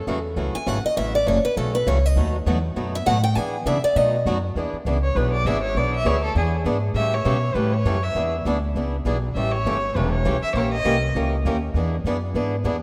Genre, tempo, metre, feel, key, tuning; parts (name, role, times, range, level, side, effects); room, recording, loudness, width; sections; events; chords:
acoustic string swing (jazz manouche); 200 BPM; 4/4; swing 58% on 8ths; E mixolydian; A4 = 435 Hz
picked steel-string acoustic guitar; melody; 0.0-4.3 s; A4 to G#5; -26 LUFS; equal
upright bass; bass; 0.0-12.8 s; E1 to E3; -26 LUFS; equal
picked steel-string acoustic guitar; accompaniment; 0.1-12.8 s; B2 to B4; -37 LUFS; equal
picked swing-style acoustic guitar; accompaniment; 0.1-12.8 s; B2 to A#4; -29 LUFS; equal
rich violin; second line; 5.0-11.1 s; G#4 to E5; -28 LUFS; equal
moderate lush hall reverb, RT60 2.4 s; rough home demo mix; -22 LUFS; mono
0.0-4.6 A section; 4.6-12.8 A section
steel-string acoustic guitar solo 0.0-4.6; violin solo 4.6-12.8
0.0 F#m7; 2.2 B7; 3.4 E7; 4.0 B7; 4.6 E7; 7.0 A7; 8.2 E7; 9.4 A7; 10.6 A#dim7; 11.8 E7